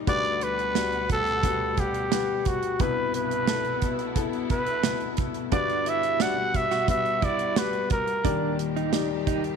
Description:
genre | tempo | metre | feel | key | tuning
piano-driven pop | 88 BPM | 4/4 | straight | G major | A4 = 440 Hz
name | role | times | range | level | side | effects
clear baby grand piano | accompaniment | 0.0-9.6 s | C2 to F#5 | -30 LUFS | left 11 dB | none
clear studio string section | sustained chords | 0.0-9.6 s | D2 to F#5 | -36 LUFS | equal | none
growling trumpet | melody | 0.1-8.6 s | F#4 to F#5 | -26 LUFS | right 1 dB | none
modern studio drum kit | drums | 0.1-9.6 s | hi-hat, kick drum, snare drum | -28 LUFS | right 4 dB | none
direct-recorded clean electric guitar | riff | 5.5-9.4 s | D4 to F#4 | -31 LUFS | right 14 dB | tremolo
room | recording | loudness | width
moderate echo chamber reverb, RT60 2.4 s | 1960s-style stereo with parts hard left and right | -23 LUFS | side -6 dB against mid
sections
0.0-9.6 A section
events
none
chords
0.1 Gmaj7/D; 2.8 Cmaj7; 5.5 Gmaj7; 8.2 Ebmaj7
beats
| 0.07 0.75 1.43 2.12 | 2.80 3.48 4.16 4.84 | 5.52 6.20 6.89 7.57 | 8.25 8.93

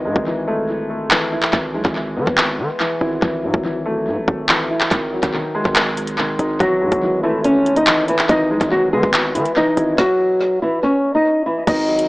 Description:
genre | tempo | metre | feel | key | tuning
hip hop, drill | 142 BPM | 4/4 | half-time | unclear | A4 = 440 Hz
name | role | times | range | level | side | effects
dark grand piano | accompaniment | 0.0-12.1 s | D#3 to E4 | -22 LUFS | equal | low-pass filter, tape echo
distorted 808-style bass | bass | 0.0-12.1 s | G#1 to D#3 | -25 LUFS | equal | distortion
drill drum kit | drums | 0.2-12.1 s | crash cymbal, handclaps, hi-hat, kick drum, snare drum | -19 LUFS | equal | overdrive, tape echo
flamenco guitar | melody | 6.6-12.1 s | E3 to D#5 | -16 LUFS | equal | low-pass filter, tape echo
room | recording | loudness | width
light reverb, digital ambience | echo-heavy mix, small speaker sound | -15 LUFS | side -20 dB against mid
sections
0.0-11.7 A section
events
break 0.0-6.6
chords
0.0 A5/G#; 1.5 E/G#; 3.2 F#m7/G#; 4.9 G#5; 6.6 Amaj7/G#; 8.3 Emaj7/G#; 10.0 F#5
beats
0.26 0.69 1.11 | 1.53 1.96 2.38 2.80 | 3.22 3.65 4.07 4.49 | 4.91 5.33 5.76 6.18 | 6.60 7.03 7.45 7.87 | 8.29 8.71 9.14 9.56 | 9.98 10.40 10.83 11.25 | 11.67

